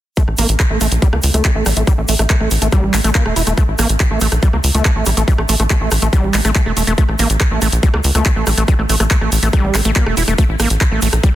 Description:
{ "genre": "psychedelic trance", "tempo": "141 BPM", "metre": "4/4", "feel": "straight", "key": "unclear", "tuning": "A4 = 441 Hz", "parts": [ { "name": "overdriven acid bass", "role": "riff", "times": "0.2-11.3 s", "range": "G3 to E4", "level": "-19 LUFS", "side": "right 1 dB", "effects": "distortion, auto-pan, sidechain pumping, ping-pong delay" }, { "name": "drum and bass drum kit", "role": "drums", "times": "0.2-11.3 s", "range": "handclaps, hi-hat, rim click", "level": "-20 LUFS", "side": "equal", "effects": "overdrive" }, { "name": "electronic kick drum", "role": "drums", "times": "0.2-11.3 s", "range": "none", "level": "-13 LUFS", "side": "equal", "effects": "none" }, { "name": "tube shaker", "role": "percussion", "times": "0.2-11.3 s", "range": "none", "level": "-27 LUFS", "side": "right 1 dB", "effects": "none" }, { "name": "tight sequencer bass", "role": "bass", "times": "0.3-11.2 s", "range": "E1 to C#2", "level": "-16 LUFS", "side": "equal", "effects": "tube saturation" } ], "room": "little or no reverb", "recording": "dense, heavily limited modern master", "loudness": "-12 LUFS", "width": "side -14 dB against mid", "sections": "0.2-11.3 A section", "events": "filter sweep on acid bass 0.2-11.3", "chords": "0.2 A5" }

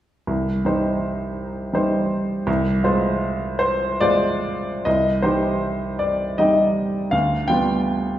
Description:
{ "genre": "classical, romantic character piece for solo piano", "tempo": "44-56 BPM (dotted quarters)", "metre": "6/8", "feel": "rubato", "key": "C minor", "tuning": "A4 = 442 Hz", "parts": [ { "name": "clear baby grand piano", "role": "solo", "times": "0.3-8.2 s", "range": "C2 to G5", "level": "-19 LUFS", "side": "equal", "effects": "none" } ], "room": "wet recital hall reverb, RT60 1.7 s", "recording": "heard from further back in the room", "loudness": "-19 LUFS", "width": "side -12 dB against mid", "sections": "0.3-4.9 A section; 4.9-8.2 B section", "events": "none", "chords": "0.3 Cm; 2.5 Fm/C; 4.9 Cm; 7.1 G7/D" }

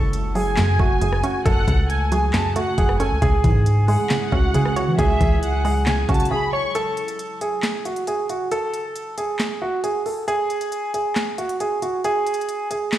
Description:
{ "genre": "hip hop, trap", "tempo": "136 BPM", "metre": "4/4", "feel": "half-time", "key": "unclear", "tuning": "A4 = 440 Hz", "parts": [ { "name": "dark baby grand piano", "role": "melody", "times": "0.0-13.0 s", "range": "F#4 to C#5", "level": "-23 LUFS", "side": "right 2 dB", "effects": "ping-pong delay" }, { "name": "hollow square pluck", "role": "accompaniment", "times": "0.0-6.8 s", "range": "F#2 to C#5", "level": "-25 LUFS", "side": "right 1 dB", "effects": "chorus" }, { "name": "glassy FM pad", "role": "sustained chords", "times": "0.0-6.7 s", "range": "C#3 to G#5", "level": "-32 LUFS", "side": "equal", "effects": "ensemble chorus, built-in reverb" }, { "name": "long sustained 808-style bass", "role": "bass", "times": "0.0-6.3 s", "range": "F#1 to E3", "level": "-21 LUFS", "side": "equal", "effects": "none" }, { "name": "trap drum kit", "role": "drums", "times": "0.1-13.0 s", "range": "handclaps, hi-hat, kick drum, rim click, snare drum", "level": "-23 LUFS", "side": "equal", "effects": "overdrive" }, { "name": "dark studio violin section", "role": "second line", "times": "0.4-6.7 s", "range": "E5 to C#6", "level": "-28 LUFS", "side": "left 1 dB", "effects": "ping-pong delay" } ], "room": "light reverb, digital ambience", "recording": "played on a big sound system in a bare room, stone room reverb, vinyl crackle", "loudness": "-18 LUFS", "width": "side -12 dB against mid", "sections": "0.0-6.8 A section; 6.8-13.0 B section", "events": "break 6.3-6.8, 6.8-13.0", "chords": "0.0 F#m; 3.2 C#m; 6.8 N.C." }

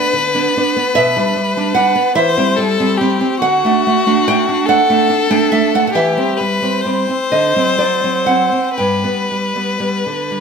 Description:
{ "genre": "romantic duo for violin and classical guitar", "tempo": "38-50 BPM (dotted quarters)", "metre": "6/8", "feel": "rubato", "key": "G major", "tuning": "A4 = 441 Hz", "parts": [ { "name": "clear violin", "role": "melody", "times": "0.0-10.4 s", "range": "F#4 to C5", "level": "-16 LUFS", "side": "left 4 dB", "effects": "none" }, { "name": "nylon-string guitar", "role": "accompaniment", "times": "0.0-10.4 s", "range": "G2 to G5", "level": "-14 LUFS", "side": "right 2 dB", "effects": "none" } ], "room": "moderate recital hall reverb, RT60 1.7 s", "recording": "close, detailed microphones", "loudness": "-12 LUFS", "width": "side -6 dB against mid", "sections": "0.0-10.4 A section", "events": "none", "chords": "0.0 G (rootless); 1.0 G/B; 2.2 C/E; 3.4 D; 5.9 C/E; 7.3 D7; 8.8 G" }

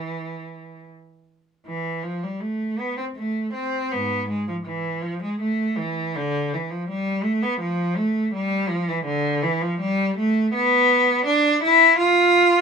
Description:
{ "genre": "classical, baroque-style suite movement for unaccompanied cello", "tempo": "81 BPM", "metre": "3/4", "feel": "rubato", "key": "unclear", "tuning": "A4 = 439 Hz", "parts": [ { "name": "clear cello", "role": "solo", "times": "0.0-12.6 s", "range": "G#2 to F4", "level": "-19 LUFS", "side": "equal", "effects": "none" } ], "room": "light reverb", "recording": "minimal, uncompressed stereo recording", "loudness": "-19 LUFS", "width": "side -6 dB against mid", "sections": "0.0-1.7 A section; 1.7-12.6 B section", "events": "none", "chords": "none" }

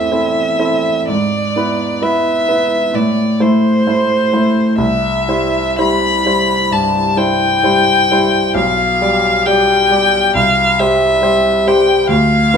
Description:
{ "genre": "classical, romantic duo for violin and grand piano", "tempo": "59-69 BPM", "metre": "4/4", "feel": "rubato", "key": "unclear", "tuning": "A4 = 440 Hz", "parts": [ { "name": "rich violin", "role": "melody", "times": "0.0-12.6 s", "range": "C5 to B5", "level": "-14 LUFS", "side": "left 1 dB", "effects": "none" }, { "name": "clear grand piano", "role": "accompaniment", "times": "0.0-12.6 s", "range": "B1 to D5", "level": "-14 LUFS", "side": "equal", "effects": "none" } ], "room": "moderate recital hall reverb, RT60 1.4 s", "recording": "close, detailed microphones", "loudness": "-11 LUFS", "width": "side -7 dB against mid", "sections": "0.0-12.6 A section", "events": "none", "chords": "0.0 Am; 1.1 E7/G#; 3.0 Am; 4.8 C; 8.6 G7/B; 10.4 C" }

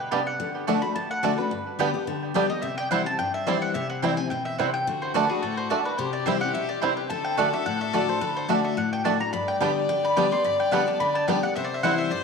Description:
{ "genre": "bluegrass", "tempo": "215 BPM", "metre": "4/4", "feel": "swing 54% on 8ths", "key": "D mixolydian", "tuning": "A4 = 440 Hz", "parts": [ { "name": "mandolin", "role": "melody", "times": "0.0-12.2 s", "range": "G#4 to D6", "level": "-29 LUFS", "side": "equal", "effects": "none" }, { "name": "picked steel-string acoustic guitar", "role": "accompaniment", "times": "0.0-12.2 s", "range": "G2 to G4", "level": "-28 LUFS", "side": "left 7 dB", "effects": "none" }, { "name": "bluegrass banjo", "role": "melody", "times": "0.1-11.9 s", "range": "G3 to E4", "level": "-31 LUFS", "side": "right 3 dB", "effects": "none" }, { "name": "mandolin", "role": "stabs", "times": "0.1-11.9 s", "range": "A3 to A5", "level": "-29 LUFS", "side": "right 9 dB", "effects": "tape echo" }, { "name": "rich fiddle", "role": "second line", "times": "4.9-12.2 s", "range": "F#4 to D5", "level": "-28 LUFS", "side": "left 3 dB", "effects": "none" } ], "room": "wet echo chamber reverb, RT60 1.5 s, small room ambience", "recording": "1960s-style stereo with parts hard left and right", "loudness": "-22 LUFS", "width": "side -5 dB against mid", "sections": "0.0-12.2 A section", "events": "none", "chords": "0.4 D; 1.5 G; 2.6 C; 4.9 D; 6.0 C; 7.1 D; 9.3 G; 11.6 C" }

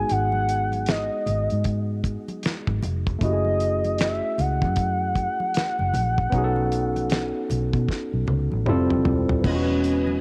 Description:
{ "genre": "R&B, neo-soul", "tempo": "77 BPM", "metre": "4/4", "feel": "swing 62% on 16ths", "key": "F# dorian", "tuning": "A4 = 440 Hz", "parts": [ { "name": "gliding portamento lead", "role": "melody", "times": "0.0-10.2 s", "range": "C4 to F#5", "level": "-28 LUFS", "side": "equal", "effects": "chorus, cassette tape" }, { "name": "barky tine electric piano", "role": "accompaniment", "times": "0.0-10.2 s", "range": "E3 to D#5", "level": "-30 LUFS", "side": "equal", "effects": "overdrive" }, { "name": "vintage muted fingered electric bass", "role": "bass", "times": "0.0-10.2 s", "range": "D#1 to B2", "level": "-28 LUFS", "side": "equal", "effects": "none" }, { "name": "damped 70s drum kit", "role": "drums", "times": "0.1-10.1 s", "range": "crash cymbal, finger snaps, hi-hat, kick drum, snare drum, toms", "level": "-29 LUFS", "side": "equal", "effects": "cassette tape" }, { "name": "congas", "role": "percussion", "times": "0.1-10.2 s", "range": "none", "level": "-37 LUFS", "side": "equal", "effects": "none" }, { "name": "percussive tonewheel organ", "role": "sustained chords", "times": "9.4-10.2 s", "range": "E3 to G#5", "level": "-34 LUFS", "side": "equal", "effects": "slow rotary speaker, chorus vibrato" } ], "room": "light reverb, studio reverb", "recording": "home recording on cassette", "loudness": "-24 LUFS", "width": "mono", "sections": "0.0-9.4 A section", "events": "drum fill 7.9-9.4", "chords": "0.0 G#m7; 3.2 F#m9; 6.3 B9; 8.7 Fmaj7; 9.4 Emaj7" }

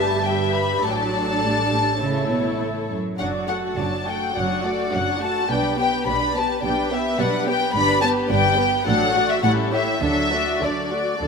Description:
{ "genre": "quick classical-period movement for string orchestra", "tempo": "105 BPM", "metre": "4/4", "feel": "uneven beats, rubato", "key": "D major", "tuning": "A4 = 439 Hz", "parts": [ { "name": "warm symphonic violin section", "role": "melody", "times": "0.0-11.3 s", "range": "D5 to B5", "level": "-22 LUFS", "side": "left 4 dB", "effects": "none" }, { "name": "warm chamber violin section", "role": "second line", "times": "0.0-11.3 s", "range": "E4 to F#5", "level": "-26 LUFS", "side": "left 3 dB", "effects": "none" }, { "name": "dark symphonic viola section", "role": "accompaniment", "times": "0.0-11.3 s", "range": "F#3 to G4", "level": "-25 LUFS", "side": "right 2 dB", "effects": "none" }, { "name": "rich chamber double bass section", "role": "bass", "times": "0.0-11.3 s", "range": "F#1 to D2", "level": "-30 LUFS", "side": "right 4 dB", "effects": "none" }, { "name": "warm symphonic cello section", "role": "bass", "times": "0.0-11.3 s", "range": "F#2 to D3", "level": "-28 LUFS", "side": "right 4 dB", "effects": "none" } ], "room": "moderate scoring stage reverb, RT60 2.0 s", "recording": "none", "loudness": "-19 LUFS", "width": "side -5 dB against mid", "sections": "0.0-11.3 A section", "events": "none", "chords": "0.0 Em/G; 0.8 D/A; 2.0 A; 3.2 D/F#; 5.5 G/B; 7.7 G; 8.9 D/A; 9.4 A7; 10.0 D" }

